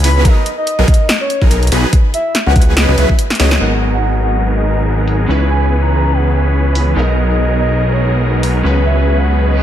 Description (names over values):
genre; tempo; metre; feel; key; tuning
future bass; 143 BPM; 4/4; swing 56% on 16ths, half-time; G# minor; A4 = 440 Hz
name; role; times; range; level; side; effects
soft octave-layered synth lead; melody; 0.0-9.6 s; C#5 to B5; -21 LUFS; equal; chorus, phaser, sidechain pumping, ping-pong delay
airy dreamy lead; arpeggios; 0.0-3.6 s; A#4 to D#5; -24 LUFS; left 1 dB; chorus, sidechain pumping
supersaw chords; riff; 0.0-9.6 s; E3 to D#5; -18 LUFS; equal; sidechain pumping, low-pass filter, ping-pong delay
fat analog bass; bass; 0.0-9.6 s; G#1 to C#2; -13 LUFS; equal; sidechain pumping
big-room dance drum kit; drums; 0.0-8.5 s; crash cymbal, hi-hat, snare drum; -18 LUFS; equal; low-pass filter on snare, small room ambience, low-pass filter on hats, low-pass filter on cymbals
electronic kick drum; drums; 0.2-3.2 s; none; -11 LUFS; equal; overdrive, small room ambience
glassy digital keys; accompaniment; 3.6-9.6 s; D#3 to B4; -23 LUFS; left 1 dB; chorus, sidechain pumping, ping-pong delay
reverse cymbal; sound effects; 9.5-9.6 s; none; -25 LUFS; right 6 dB; none
room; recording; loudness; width
light reverb, digital ambience; none; -11 LUFS; side -11 dB against mid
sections
0.0-3.6 A section; 3.6-9.6 B section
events
drop 0.0-3.6; drum fill 3.3-3.6; band accent 3.5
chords
0.2 G#m9; 1.9 C#7sus4; 3.6 G#m9; 5.3 C#m7; 7.0 G#m9/B; 8.6 C#7sus4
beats
| 0.25 0.67 1.09 1.51 | 1.93 2.35 2.77 3.19 | 3.61 4.03 4.45 4.87 | 5.29 5.71 6.12 6.54 | 6.96 7.38 7.80 8.22 | 8.64 9.06 9.48